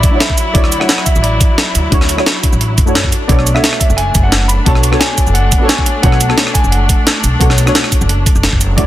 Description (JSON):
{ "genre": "liquid drum and bass", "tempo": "175 BPM", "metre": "4/4", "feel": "swing 53% on 16ths", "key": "B dorian", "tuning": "A4 = 440 Hz", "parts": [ { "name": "dark grand piano", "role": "melody", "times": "0.0-8.9 s", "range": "D5 to B5", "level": "-20 LUFS", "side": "equal", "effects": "ping-pong delay" }, { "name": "deep mellow chord stab", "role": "accompaniment", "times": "0.0-8.9 s", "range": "A3 to C#5", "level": "-19 LUFS", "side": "left 1 dB", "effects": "chorus, ping-pong delay" }, { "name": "warm chamber string section", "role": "sustained chords", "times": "0.0-8.9 s", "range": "F#3 to C#5", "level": "-21 LUFS", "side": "equal", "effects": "sidechain pumping" }, { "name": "upright bass", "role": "bass", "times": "0.0-8.9 s", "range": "F#1 to F#2", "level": "-15 LUFS", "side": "equal", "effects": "none" }, { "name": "breakbeat sampler-style drum kit", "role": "drums", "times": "0.0-8.9 s", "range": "hi-hat, rim click, shaker, snare drum", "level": "-15 LUFS", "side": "right 1 dB", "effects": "none" }, { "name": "electronic kick drum", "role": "drums", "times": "0.0-8.9 s", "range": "none", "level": "-13 LUFS", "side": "equal", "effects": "overdrive" } ], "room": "light reverb, small room ambience", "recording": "dense, heavily limited modern master", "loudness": "-9 LUFS", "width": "side -14 dB against mid", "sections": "0.0-8.9 A section", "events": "none", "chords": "0.0 Dmaj9; 3.1 Bm9" }